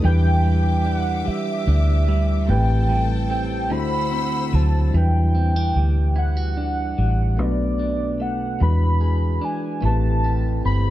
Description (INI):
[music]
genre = slow six-eight R&B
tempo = 49 BPM (dotted quarters)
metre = 6/8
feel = straight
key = unclear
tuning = A4 = 440 Hz
[part]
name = warm velvety synth lead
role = melody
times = 0.0-10.9 s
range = D5 to B5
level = -26 LUFS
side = right 1 dB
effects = chorus
[part]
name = electric guitar at the edge of break-up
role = second line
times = 0.0-10.9 s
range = A2 to G#4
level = -28 LUFS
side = right 6 dB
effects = none
[part]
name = barky tine electric piano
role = accompaniment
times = 0.0-10.9 s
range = G3 to C5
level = -28 LUFS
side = left 5 dB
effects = overdrive
[part]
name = rich studio string section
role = sustained chords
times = 0.0-4.9 s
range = G4 to E6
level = -34 LUFS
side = left 5 dB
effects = none
[part]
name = vintage muted fingered electric bass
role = bass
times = 0.0-10.9 s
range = G1 to E2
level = -19 LUFS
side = equal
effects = none
[sound]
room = little or no reverb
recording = none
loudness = -18 LUFS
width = side -14 dB against mid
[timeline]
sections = 0.0-4.9 A section; 4.9-10.9 B section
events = none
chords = 0.0 Em7; 2.5 Am7; 3.7 D9; 4.9 Em9; 7.4 Bm7; 8.6 E7; 9.8 Am9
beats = | 0.03 1.25 | 2.48 3.70 | 4.93 6.15 | 7.38 8.60 | 9.83